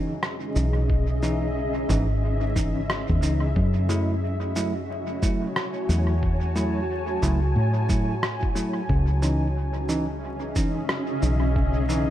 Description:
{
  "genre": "ambient dub",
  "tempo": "90 BPM",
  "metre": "4/4",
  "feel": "swing 60% on 16ths",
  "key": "C# minor",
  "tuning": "A4 = 439 Hz",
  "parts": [
    { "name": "granular cloud pad", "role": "sustained chords", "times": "0.0-12.1 s", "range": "C#4 to A5", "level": "-29 LUFS", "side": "left 1 dB", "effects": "built-in reverb" },
    { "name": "bell-like tine electric piano", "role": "stabs", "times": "0.0-12.1 s", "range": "E3 to E4", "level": "-29 LUFS", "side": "right 1 dB", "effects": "auto-pan, dub echo" },
    { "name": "fingered electric bass", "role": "bass", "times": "0.0-12.1 s", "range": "G#1 to B2", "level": "-24 LUFS", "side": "equal", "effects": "none" },
    { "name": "electronic rim click and cabasa", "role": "drums", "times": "0.2-12.1 s", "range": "none", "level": "-31 LUFS", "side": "equal", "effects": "dub echo" },
    { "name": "electronic kick drum", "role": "drums", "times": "0.9-11.7 s", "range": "none", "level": "-26 LUFS", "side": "equal", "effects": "none" }
  ],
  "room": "light reverb",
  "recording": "vinyl crackle",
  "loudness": "-22 LUFS",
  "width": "side -12 dB against mid",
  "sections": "0.0-12.1 A section",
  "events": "none",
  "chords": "0.0 C#madd9; 3.6 F#m7; 8.9 C#madd9"
}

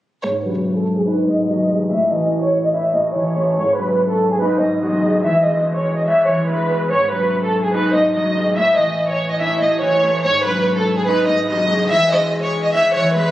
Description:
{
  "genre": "hip hop",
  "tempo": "144 BPM",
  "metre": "4/4",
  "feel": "half-time",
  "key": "G# phrygian",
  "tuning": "A4 = 440 Hz",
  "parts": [
    { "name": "dark studio violin section", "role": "melody", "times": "0.2-13.3 s", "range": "G#4 to E5", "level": "-17 LUFS", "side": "equal", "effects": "low-pass filter, ping-pong delay" },
    { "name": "electric guitar at the edge of break-up", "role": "accompaniment", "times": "0.2-13.3 s", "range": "G#2 to E5", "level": "-19 LUFS", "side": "left 1 dB", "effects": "lush chorus, low-pass filter" }
  ],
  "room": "moderate lush hall reverb, RT60 2.2 s",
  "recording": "recorded on a phone in the room, club reverb",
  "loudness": "-15 LUFS",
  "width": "side -14 dB against mid",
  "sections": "0.2-13.3 A section",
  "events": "filter sweep 0.2-13.3",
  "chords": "0.2 G#5; 1.9 A; 3.6 G#5; 5.2 E; 6.9 G#5; 8.6 A; 10.2 G#5; 11.9 E"
}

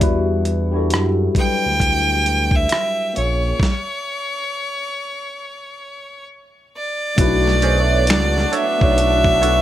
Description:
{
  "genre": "R&B, neo-soul",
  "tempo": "67 BPM",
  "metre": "4/4",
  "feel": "swing 62% on 16ths",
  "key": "unclear",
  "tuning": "A4 = 442 Hz",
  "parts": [
    { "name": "tine electric piano", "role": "accompaniment", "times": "0.0-9.6 s", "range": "F#3 to E5", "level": "-22 LUFS", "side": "left 4 dB", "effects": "phaser" },
    { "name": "smooth synth bass", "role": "bass", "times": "0.0-9.6 s", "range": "A#1 to F#2", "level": "-20 LUFS", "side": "equal", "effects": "none" },
    { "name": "dusty soul sampler-style drum kit", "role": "drums", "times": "0.0-9.6 s", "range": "finger snaps, hi-hat, kick drum, rim click, snare drum", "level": "-19 LUFS", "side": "equal", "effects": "none" },
    { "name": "bright fiddle", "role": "melody", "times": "1.4-9.6 s", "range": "C#5 to G5", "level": "-20 LUFS", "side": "right 1 dB", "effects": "plate reverb" },
    { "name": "clear studio string section", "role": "sustained chords", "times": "7.2-9.6 s", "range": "A3 to D4", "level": "-30 LUFS", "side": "equal", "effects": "none" },
    { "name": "bright saxophone section", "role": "stabs", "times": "7.2-9.6 s", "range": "F#3 to F#4", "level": "-26 LUFS", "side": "right 2 dB", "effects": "none" },
    { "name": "hollow-body jazz guitar", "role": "second line", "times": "7.6-9.6 s", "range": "D4 to E5", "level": "-21 LUFS", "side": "right 6 dB", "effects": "wah" }
  ],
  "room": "light reverb",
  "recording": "none",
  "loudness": "-16 LUFS",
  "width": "side -12 dB against mid",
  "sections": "0.0-7.2 A section; 7.2-9.6 B section",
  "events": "stop 3.6-7.2",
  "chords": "0.0 Em9; 3.1 A#m7; 7.2 Bm11"
}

